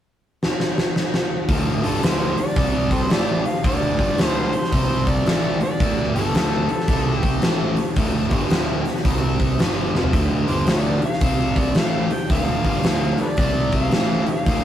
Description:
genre	blues rock power trio and southern rock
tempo	111 BPM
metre	4/4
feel	swing 64% on 8ths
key	D minor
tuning	A4 = 438 Hz
part	huge arena drum kit	drums	0.4-14.6 s	hi-hat, kick drum, snare drum, toms	-20 LUFS	equal	none
part	biting overdriven guitar	riff	1.5-14.6 s	D2 to C4	-24 LUFS	equal	spring reverb
part	fuzz picked electric bass	bass	1.5-14.6 s	D1 to C2	-26 LUFS	equal	overdrive
part	overdriven harmonica	melody	1.8-14.6 s	G4 to G5	-26 LUFS	equal	none
room	moderate studio reverb, RT60 0.6 s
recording	rough rehearsal-room recording, warm saturation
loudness	-18 LUFS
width	side -10 dB against mid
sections	0.0-1.5 A section; 1.5-14.6 B section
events	drum fill 0.4-1.5, 9.9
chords	0.0 N.C.; 1.5 D5; 2.6 C5; 3.1 D5; 4.7 C5; 5.3 D5; 6.9 C5; 7.4 D5; 9.0 C5; 9.6 Dm; 11.2 C5; 11.8 Dm; 13.4 C5; 13.9 Dm

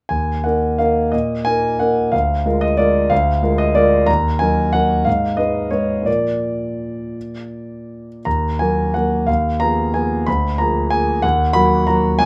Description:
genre	classical, piano waltz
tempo	158-196 BPM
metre	3/4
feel	rubato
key	Eb minor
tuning	A4 = 439 Hz
part	dark concert grand piano	solo	0.1-12.3 s	Db2 to Cb6	-18 LUFS	equal	none
room	light reverb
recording	none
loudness	-17 LUFS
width	mono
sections	0.1-12.3 A section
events	none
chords	0.1 Ebm; 2.1 Bb7/D; 4.1 Ebm; 5.1 Abm; 6.1 Bb; 8.3 Ebm; 9.3 Fm7b5/Eb; 10.3 Bb7/D; 11.2 Ebm

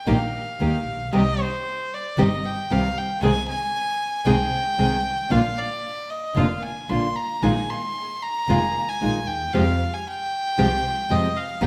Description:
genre	tango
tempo	114 BPM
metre	4/4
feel	rubato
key	unclear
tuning	A4 = 440 Hz
part	bright violin	second line	0.0-11.7 s	C5 to C6	-28 LUFS	equal	none
part	nylon-string guitar	accompaniment	0.1-11.7 s	C3 to Ab4	-26 LUFS	equal	none
part	dark studio string section	stabs	0.1-11.7 s	Ab3 to Ab4	-35 LUFS	equal	tape echo
part	dark double bass	bass	0.1-11.7 s	F1 to F2	-28 LUFS	equal	none
room	wet large studio reverb, RT60 1.3 s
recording	none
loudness	-23 LUFS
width	mono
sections	0.0-11.7 A section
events	violin solo 0.0-11.7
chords	0.0 Eb; 1.1 Cm; 3.2 Ab/C; 5.3 Bb; 7.4 Bb7sus4; 9.5 Fmadd9

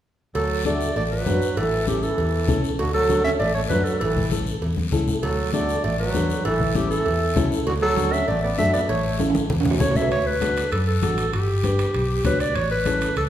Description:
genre	latin, cumbia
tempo	197 BPM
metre	4/4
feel	straight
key	D major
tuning	A4 = 440 Hz
part	bright trombone	second line	0.3-9.2 s	D3 to C#4	-29 LUFS	right 3 dB	none
part	guiro	percussion	0.3-13.3 s	none	-36 LUFS	left 5 dB	none
part	breathy clarinet	melody	0.4-13.2 s	F#4 to E5	-24 LUFS	right 1 dB	none
part	fingered electric bass	bass	0.4-13.3 s	G1 to F#2	-25 LUFS	equal	none
part	congas	percussion	0.4-13.3 s	none	-29 LUFS	left 2 dB	none
part	cowbell and timbales	percussion	0.4-13.3 s	none	-30 LUFS	right 5 dB	none
part	nylon-string guitar	accompaniment	0.7-13.1 s	C#4 to C#5	-28 LUFS	left 3 dB	none
room	wet recital hall reverb, RT60 1.5 s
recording	recorded in a church or concert hall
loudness	-19 LUFS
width	side -11 dB against mid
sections	0.4-10.1 A section; 10.1-13.3 B section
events	drum fill 4.8-5.2, 9.2-10.1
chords	0.4 D; 1.6 A; 2.8 D; 4.0 A; 5.2 D; 6.4 A; 7.7 D; 8.9 A; 10.1 D; 11.3 G; 12.6 A

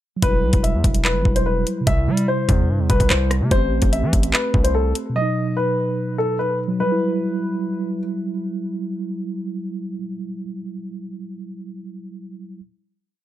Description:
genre	hip hop, drill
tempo	146 BPM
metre	4/4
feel	half-time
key	E harmonic minor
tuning	A4 = 440 Hz
part	dark baby grand piano	melody	0.2-8.0 s	A4 to E5	-23 LUFS	left 2 dB	tape echo
part	mellow tine electric piano	accompaniment	0.2-12.6 s	B2 to G4	-24 LUFS	right 2 dB	medium stereo tremolo
part	distorted 808-style bass	bass	0.2-4.9 s	E1 to G3	-20 LUFS	equal	distortion
part	drill drum kit	drums	0.2-5.0 s	handclaps, hi-hat, kick drum, rim click	-20 LUFS	equal	overdrive
room	little or no reverb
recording	dark, warm production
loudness	-18 LUFS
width	side -13 dB against mid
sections	0.2-6.8 hook; 6.8-10.1 final chord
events	none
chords	0.2 Emadd9; 1.9 C; 3.5 Am7; 5.2 B; 6.8 Emadd9

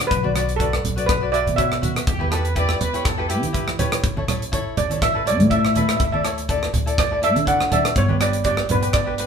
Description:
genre	calypso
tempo	122 BPM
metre	4/4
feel	swing 54% on 16ths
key	D major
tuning	A4 = 440 Hz
part	steel pan	melody	0.0-9.3 s	A4 to F#5	-22 LUFS	right 2 dB	none
part	tenor ukulele	accompaniment	0.0-9.3 s	D4 to E5	-27 LUFS	left 4 dB	none
part	upright bass	bass	0.0-9.3 s	G1 to E3	-24 LUFS	equal	none
part	tight funk drum kit	drums	0.0-9.3 s	hi-hat, kick drum, rim click	-24 LUFS	equal	none
part	congas	percussion	0.2-8.8 s	none	-27 LUFS	right 3 dB	none
part	warm horn section	second line	2.1-3.7 s	G4 to D5	-27 LUFS	equal	none
room	wet studio reverb, RT60 0.9 s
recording	band playing live in one room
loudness	-18 LUFS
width	side -7 dB against mid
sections	0.0-9.3 A section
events	steel pan solo 0.0-9.3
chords	0.1 Bm7; 2.1 Em; 4.0 A; 6.0 Dsus2; 8.0 G

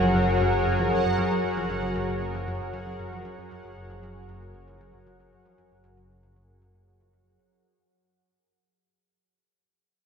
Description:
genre	ambient, sequencer-driven space music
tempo	116 BPM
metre	4/4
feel	straight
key	Gb major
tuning	A4 = 435 Hz
part	lush unison pad	sustained chords	0.0-7.7 s	Gb3 to Db5	-26 LUFS	left 1 dB	chorus
part	analog pluck	riff	0.0-7.6 s	Gb2 to F3	-32 LUFS	equal	chorus, ping-pong delay
part	fat analog bass	bass	0.0-7.6 s	Gb1	-33 LUFS	equal	none
part	bubbling stepped-filter texture	texture	0.0-7.7 s	Gb5	-33 LUFS	right 3 dB	chorus, built-in reverb
room	wet cathedral reverb, RT60 5.0 s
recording	in a vast, echoing space, nothing above 10.7 kHz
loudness	-23 LUFS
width	side -6 dB against mid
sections	0.0-7.7 A section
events	fade-out on synth arpeggio sound 0.0-7.7; fade-out 0.0-7.7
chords	0.0 Gbadd9

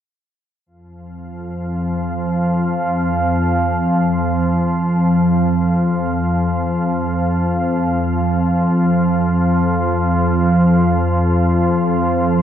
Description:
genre	ambient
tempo	free time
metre	none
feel	none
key	unclear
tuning	A4 = 438 Hz
part	organ-like drone	solo	1.1-12.4 s	F2 to F3	-15 LUFS	equal	ensemble chorus, built-in reverb, tape echo
room	wet plate reverb, RT60 3.2 s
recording	echo-heavy mix, cassette tape, nothing above 7.7 kHz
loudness	-14 LUFS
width	side -9 dB against mid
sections	0.7-12.4 A section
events	none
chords	none

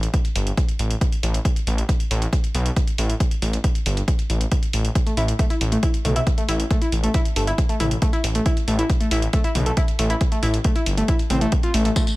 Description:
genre	driving peak-time techno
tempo	137 BPM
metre	4/4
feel	straight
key	unclear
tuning	A4 = 439 Hz
part	detuned saw bass	bass	0.0-11.9 s	G1 to B1	-22 LUFS	equal	sidechain pumping
part	techno drum kit	drums	0.0-12.2 s	hi-hat, tambourine, toms	-29 LUFS	equal	sidechain pumping on hats, sidechain pumping on toms, sidechain pumping on perc
part	electronic kick drum	drums	0.1-12.1 s	none	-20 LUFS	equal	none
part	overdriven synth lead	riff	5.1-12.0 s	A3 to F4	-24 LUFS	equal	sidechain pumping, tape echo
room	little or no reverb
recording	none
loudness	-18 LUFS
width	side -19 dB against mid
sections	0.0-12.2 A section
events	none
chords	none

